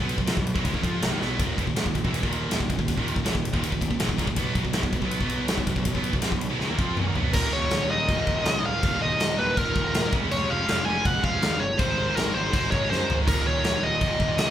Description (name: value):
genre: heavy metal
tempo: 162 BPM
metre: 4/4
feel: straight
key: Eb minor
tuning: A4 = 440 Hz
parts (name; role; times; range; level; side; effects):
- heavy high-gain guitar; riff; 0.0-14.5 s; Eb2 to F4; -32 LUFS; left 8 dB; distortion
- high-gain distorted guitar; riff; 0.0-14.5 s; Eb2 to F4; -30 LUFS; right 7 dB; distortion
- fuzz picked electric bass; bass; 0.0-14.5 s; Eb1 to Gb2; -30 LUFS; equal; overdrive
- big rock drum kit; drums; 0.1-14.5 s; crash cymbal, kick drum, ride cymbal, snare drum, splash cymbal, toms; -26 LUFS; equal; none
- high-gain lead guitar; melody; 7.3-14.5 s; Bb4 to Ab5; -26 LUFS; equal; distortion
room: light reverb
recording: band playing live in one room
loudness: -22 LUFS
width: side -11 dB against mid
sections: 0.0-7.3 A section; 7.3-14.5 B section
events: drum fill 1.2, 6.6-7.3, 12.9-13.3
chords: 0.0 B5; 1.4 Eb5; 4.4 B5; 7.3 Eb5; 10.1 Db/F; 11.8 Ab; 13.3 Eb5